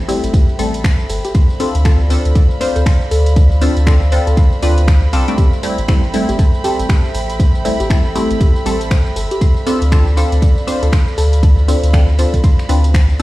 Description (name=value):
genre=deep house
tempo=119 BPM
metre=4/4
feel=swing 60% on 16ths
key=unclear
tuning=A4 = 439 Hz
part: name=dark analog pad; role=sustained chords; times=0.0-13.2 s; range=A4 to G5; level=-26 LUFS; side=right 1 dB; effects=chorus, sidechain pumping
part: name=round analog bass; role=bass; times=0.0-13.2 s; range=G1 to D2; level=-14 LUFS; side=equal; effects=sidechain pumping
part: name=warm chamber violin section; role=texture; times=0.0-13.2 s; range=B5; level=-30 LUFS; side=right 2 dB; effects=sidechain pumping
part: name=soft round pluck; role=arpeggios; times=0.1-13.2 s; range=G4 to C6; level=-26 LUFS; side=left 2 dB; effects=chorus, sidechain pumping, ping-pong delay
part: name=filtered dub chord stab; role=stabs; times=0.1-13.2 s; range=G3 to C5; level=-20 LUFS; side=left 1 dB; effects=phaser, sidechain pumping, digital delay
part: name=deep house drum kit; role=drums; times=0.1-13.2 s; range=finger snaps, hi-hat, ride cymbal, tambourine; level=-27 LUFS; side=equal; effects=studio reverb
part: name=electronic kick drum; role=drums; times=0.3-13.1 s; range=none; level=-12 LUFS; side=equal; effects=studio reverb
room=little or no reverb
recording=played on a big sound system in a bare room, stone room reverb, vinyl crackle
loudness=-11 LUFS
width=side -17 dB against mid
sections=0.0-13.2 A section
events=none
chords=0.0 Am7; 1.3 Dm7; 5.4 Am7; 9.4 Dm7